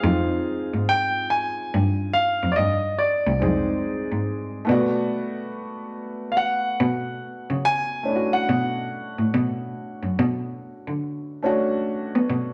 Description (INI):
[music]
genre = R&B, neo-soul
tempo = 71 BPM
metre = 4/4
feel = swing 64% on 16ths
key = unclear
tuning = A4 = 439 Hz
[part]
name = warm grand piano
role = melody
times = 0.0-12.5 s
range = D5 to Ab5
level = -27 LUFS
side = equal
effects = none
[part]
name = warm upright piano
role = accompaniment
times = 0.0-12.5 s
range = Ab3 to D5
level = -29 LUFS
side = equal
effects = none
[part]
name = rich cello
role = bass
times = 0.0-12.5 s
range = C2 to B3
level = -26 LUFS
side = equal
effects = none
[sound]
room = wet large studio reverb, RT60 1.2 s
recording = band playing live in one room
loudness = -24 LUFS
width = mono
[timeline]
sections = 0.0-12.5 A section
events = none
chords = 0.0 Fm9; 4.7 Bm9